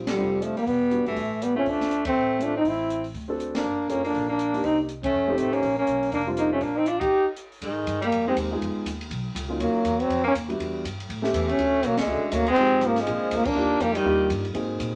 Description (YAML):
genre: jazz, small-group swing and bop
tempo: 242 BPM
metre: 4/4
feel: swing 60% on 8ths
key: unclear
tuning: A4 = 438 Hz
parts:
  - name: warm grand piano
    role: accompaniment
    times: 0.0-14.9 s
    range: F#3 to A4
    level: -32 LUFS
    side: equal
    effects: none
  - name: upright bass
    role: bass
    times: 0.0-15.0 s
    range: E1 to Bb2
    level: -37 LUFS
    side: equal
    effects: none
  - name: mellow trombone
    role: melody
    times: 0.1-14.3 s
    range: G3 to G4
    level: -26 LUFS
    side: equal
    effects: none
  - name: bright tenor saxophone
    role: second line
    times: 0.1-14.3 s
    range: D3 to Eb4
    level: -33 LUFS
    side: equal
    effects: none
  - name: compact cocktail drum kit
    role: drums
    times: 0.1-14.9 s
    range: crash cymbal, hi-hat, kick drum, ride cymbal, snare drum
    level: -39 LUFS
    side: equal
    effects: none
room: moderate studio reverb, RT60 0.6 s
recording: faint mains hum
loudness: -25 LUFS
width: mono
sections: 0.0-7.6 A section; 7.6-15.0 B section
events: band accent 0.0, 2.0, 3.5, 5.0, 7.0, 12.0, 13.4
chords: 0.0 Bb6; 0.7 Em7; 1.2 Dm7; 2.7 Am; 3.1 D7; 3.6 Gm7; 4.6 Cm7; 5.1 F7; 5.6 Bb6; 7.1 N.C.; 7.6 Abmaj7; 8.6 Fm7b5; 9.1 Bmaj9#11; 9.6 Ebm7; 10.6 Em7; 11.1 A7; 11.6 Dmaj7; 12.6 Fm7; 13.1 Bb7; 13.6 Ebmaj7